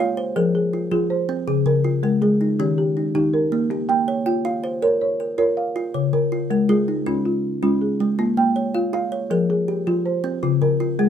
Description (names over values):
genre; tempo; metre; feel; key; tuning
southern african traditional, mbira-style interlocking cycle; 107 BPM (dotted quarters); 12/8; straight; Bb dorian; A4 = 440 Hz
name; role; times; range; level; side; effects
folk marimba with soft mallets; arpeggios; 0.0-11.1 s; Db3 to G5; -20 LUFS; left 2 dB; none
kalimba; arpeggios; 0.0-11.1 s; Db3 to G5; -23 LUFS; right 4 dB; none
room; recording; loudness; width
moderate small room reverb, RT60 0.5 s; close, detailed microphones; -18 LUFS; side -9 dB against mid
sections
0.0-8.2 A section; 8.2-11.1 B section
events
none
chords
0.4 Fm; 1.5 Db; 2.6 Eb; 3.7 Bbm; 6.0 Db; 8.2 Bbm; 9.3 Fm; 10.4 Db